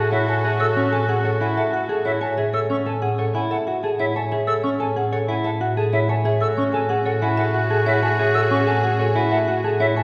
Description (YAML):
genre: classical, minimalist pattern music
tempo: 186 BPM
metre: 6/4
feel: straight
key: A major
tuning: A4 = 440 Hz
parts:
  - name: marimba with medium mallets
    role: melody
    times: 0.0-10.0 s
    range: A4 to G#5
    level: -27 LUFS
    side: equal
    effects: none
  - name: warm oboe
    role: second line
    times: 0.0-2.3, 6.4-10.0 s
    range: F#4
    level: -29 LUFS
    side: equal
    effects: none
  - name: clear symphonic string section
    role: sustained chords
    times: 0.0-2.3, 6.4-10.0 s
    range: F#4 to A4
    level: -31 LUFS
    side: equal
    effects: none
  - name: semi-hollow electric guitar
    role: arpeggios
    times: 0.0-10.0 s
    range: C#4 to C#5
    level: -26 LUFS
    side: equal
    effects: none
  - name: silver concert flute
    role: arpeggios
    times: 0.0-10.0 s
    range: E5 to E6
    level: -31 LUFS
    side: equal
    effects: none
  - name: rich studio double bass section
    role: bass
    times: 0.0-10.0 s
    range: A2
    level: -28 LUFS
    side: equal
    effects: none
room: wet concert hall reverb, RT60 2.4 s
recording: recorded in a church or concert hall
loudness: -21 LUFS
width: mono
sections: 0.0-10.0 A section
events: none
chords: 0.0 A6